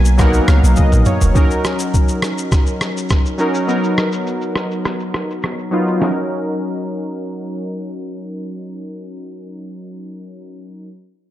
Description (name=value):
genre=afrobeats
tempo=103 BPM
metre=4/4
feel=straight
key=Eb minor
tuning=A4 = 440 Hz
part: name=glassy wavetable pluck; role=melody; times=0.0-1.0 s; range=none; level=barely audible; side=none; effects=none
part: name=warm analog keys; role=accompaniment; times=0.0-10.9 s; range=F#3 to Ab5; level=-20 LUFS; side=equal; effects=chorus
part: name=punchy sub bass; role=bass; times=0.0-1.3 s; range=F1 to Db2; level=-12 LUFS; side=equal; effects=none
part: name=boom bap sampler-style drum kit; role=drums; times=0.1-6.2 s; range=kick drum, rim click, shaker, snare drum, toms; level=-18 LUFS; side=equal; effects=none
room=light reverb, digital ambience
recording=low-pass filter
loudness=-15 LUFS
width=side -13 dB against mid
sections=0.0-1.4 A section; 1.4-6.0 B section; 6.0-8.3 C section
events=synth keys fill 0.0-1.4; drum fill 0.8-1.4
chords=0.0 Bmaj7; 1.4 Ebm7; 3.7 Bmaj7; 6.0 Ebm7